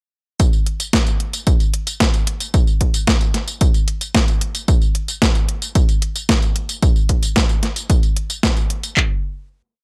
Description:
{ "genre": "italo disco", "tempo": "112 BPM", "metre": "4/4", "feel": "straight", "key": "none", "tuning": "none", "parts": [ { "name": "clean 12-bit digital drum machine", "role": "drums", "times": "0.4-8.9 s", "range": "hi-hat, snare drum, tambourine", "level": "-23 LUFS", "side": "equal", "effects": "overdrive, small room ambience" }, { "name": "punchy analog drum machine", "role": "drums", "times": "0.4-9.1 s", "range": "handclaps, kick drum", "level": "-18 LUFS", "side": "equal", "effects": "small room ambience" } ], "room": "digital ambience", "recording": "none", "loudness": "-18 LUFS", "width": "mono", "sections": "0.4-9.0 verse; 9.0-9.8 final hit", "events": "none", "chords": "none", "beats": "| 0.40 0.93 1.47 2.00 | 2.54 3.08 3.61 4.15 | 4.68 5.22 5.75 6.29 | 6.83 7.36 7.90 8.43 | 8.97" }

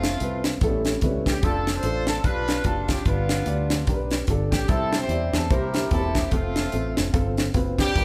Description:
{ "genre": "uptempo gospel", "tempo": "147 BPM", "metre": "4/4", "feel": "swing 60% on 8ths", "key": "unclear", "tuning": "A4 = 439 Hz", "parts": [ { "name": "warm horn section", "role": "melody", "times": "0.0-8.0 s", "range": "A3 to C5", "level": "-30 LUFS", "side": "equal", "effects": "none" }, { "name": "dark upright piano", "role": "accompaniment", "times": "0.0-8.0 s", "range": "G2 to D5", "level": "-32 LUFS", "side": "equal", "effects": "none" }, { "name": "fingered electric bass", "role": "bass", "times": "0.0-8.0 s", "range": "E1 to E2", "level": "-30 LUFS", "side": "equal", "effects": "none" }, { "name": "tight funk drum kit", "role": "drums", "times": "0.0-8.0 s", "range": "hi-hat, kick drum, snare drum", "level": "-27 LUFS", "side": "equal", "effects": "none" } ], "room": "wet large studio reverb, RT60 1.2 s", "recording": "band playing live in one room", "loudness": "-24 LUFS", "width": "mono", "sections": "0.0-8.0 A section", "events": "none", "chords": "0.0 F; 0.6 A7; 1.4 Dm/F; 3.1 G; 4.7 C; 5.5 C7; 6.3 F", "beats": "0.21 0.62 1.02 | 1.43 1.84 2.25 2.65 | 3.06 3.47 3.88 4.28 | 4.69 5.10 5.51 5.91 | 6.32 6.73 7.14 7.54 | 7.95" }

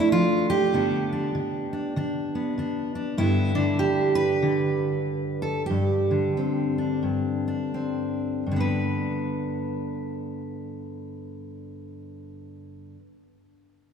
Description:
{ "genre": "folk, solo fingerstyle acoustic guitar", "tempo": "81-98 BPM", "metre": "4/4", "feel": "swing 62% on 8ths", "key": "G mixolydian", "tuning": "A4 = 439 Hz", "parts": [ { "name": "fingerpicked steel-string acoustic guitar", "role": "solo", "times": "0.0-13.0 s", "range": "G2 to B4", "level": "-24 LUFS", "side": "equal", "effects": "none" } ], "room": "wet church reverb, RT60 3.0 s", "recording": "recorded in a church or concert hall", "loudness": "-23 LUFS", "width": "side -7 dB against mid", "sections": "0.0-3.2 A section; 3.2-8.5 B section; 8.5-11.4 C section", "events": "slowing down 3.2-8.5", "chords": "0.0 F; 0.7 G; 5.7 Csus2/G; 8.5 G", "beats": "0.11 | 0.72 1.33 1.95 2.56 | 3.17 3.79 4.41 5.04 | 5.68 6.34 7.02 7.72 | 8.45 9.20 9.94 10.69" }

